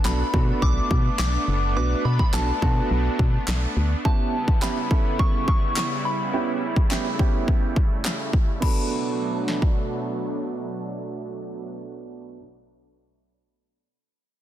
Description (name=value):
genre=dance-pop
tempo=105 BPM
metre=4/4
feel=straight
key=B minor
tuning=A4 = 440 Hz
part: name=warm concert grand piano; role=accompaniment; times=0.0-12.4 s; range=B3 to B4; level=-29 LUFS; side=right 5 dB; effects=sidechain pumping, low-pass filter
part: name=supersaw pad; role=sustained chords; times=0.0-11.7 s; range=B2 to E4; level=-30 LUFS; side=equal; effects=sidechain pumping, low-pass filter
part: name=soft synth bell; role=melody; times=0.1-12.4 s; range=A5 to D6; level=-30 LUFS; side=left 2 dB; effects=chorus, low-pass filter, ping-pong delay
part: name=organ-like FM bass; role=bass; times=0.1-4.0 s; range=F#1 to B2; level=-23 LUFS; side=equal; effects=sidechain pumping
part: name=house drum kit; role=drums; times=0.1-9.8 s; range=crash cymbal, handclaps, kick drum, snare drum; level=-22 LUFS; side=equal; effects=overdrive
room=light reverb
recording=dense, heavily limited modern master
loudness=-20 LUFS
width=side -12 dB against mid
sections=0.0-8.6 A section; 8.6-10.9 B section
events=filter sweep 0.0-8.6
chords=0.0 Bm7; 4.0 C#m7b5; 8.6 Bm7